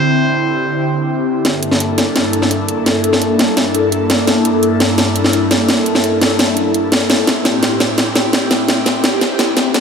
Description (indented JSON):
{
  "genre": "liquid drum and bass",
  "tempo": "170 BPM",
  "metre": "4/4",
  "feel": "straight",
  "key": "G dorian",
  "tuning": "A4 = 438 Hz",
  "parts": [
    { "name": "trumpet with straight mute", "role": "melody", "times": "0.0-1.1 s", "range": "C5", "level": "-20 LUFS", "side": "equal", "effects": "diffuse ambient delay" },
    { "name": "airy breathy pad", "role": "sustained chords", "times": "0.0-9.8 s", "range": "G2 to A4", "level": "-15 LUFS", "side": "left 1 dB", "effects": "chorus, phaser" },
    { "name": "drum and bass drum kit", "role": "drums", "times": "1.4-9.8 s", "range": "hi-hat, snare drum", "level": "-14 LUFS", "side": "equal", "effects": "overdrive" }
  ],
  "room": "wet plate reverb, RT60 1.9 s, digital ambience",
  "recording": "dreamy mix soaked in reverb, high-pass filter, low-pass filter",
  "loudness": "-12 LUFS",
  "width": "side -6 dB against mid",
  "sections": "0.0-1.5 A section; 1.5-9.8 B section",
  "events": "filter sweep 0.0-1.5; build-up 1.5-9.8; drum fill 1.5-9.8",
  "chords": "0.0 D7sus4; 1.5 Gm69; 7.1 Am7",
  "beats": "| 0.04 0.39 0.74 1.10 | 1.45 1.80 2.16 2.51 | 2.86 3.22 3.57 3.92 | 4.28 4.63 4.98 5.33 | 5.69 6.04 6.39 6.75 | 7.10 7.45 7.80 8.16 | 8.51 8.86 9.22 9.57"
}